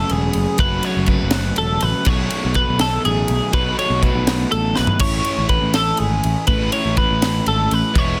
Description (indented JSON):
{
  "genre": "math rock and midwest emo",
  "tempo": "81 BPM (dotted quarters)",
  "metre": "6/8",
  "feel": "straight",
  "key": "unclear",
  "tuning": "A4 = 440 Hz",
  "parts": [
    { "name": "twangy electric guitar", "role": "accompaniment", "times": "0.0-0.6 s", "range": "E3", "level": "-42 LUFS", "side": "equal", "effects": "none" },
    { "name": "twelve-string electric guitar", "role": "arpeggios", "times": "0.0-8.2 s", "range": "G#4 to C#5", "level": "-23 LUFS", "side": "equal", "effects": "plate reverb" },
    { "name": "crunchy overdriven guitar", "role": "riff", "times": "0.0-8.2 s", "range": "F#2 to F#4", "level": "-25 LUFS", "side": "equal", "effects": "none" },
    { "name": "picked electric bass", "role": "bass", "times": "0.0-8.1 s", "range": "E1 to B1", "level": "-24 LUFS", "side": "equal", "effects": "none" },
    { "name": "crisp fusion drum kit", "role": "drums", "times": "0.1-8.1 s", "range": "crash cymbal, kick drum, ride cymbal, snare drum, toms", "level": "-24 LUFS", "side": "equal", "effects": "none" }
  ],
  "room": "light reverb",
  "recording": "dense, heavily limited modern master",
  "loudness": "-18 LUFS",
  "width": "mono",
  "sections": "0.0-8.2 A section",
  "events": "drum fill 4.8",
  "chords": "0.0 F#m9; 2.1 B13; 5.0 Amaj9",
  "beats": "| 0.60 1.33 | 2.07 2.81 | 3.54 4.28 | 5.02 5.75 | 6.49 7.23 | 7.96"
}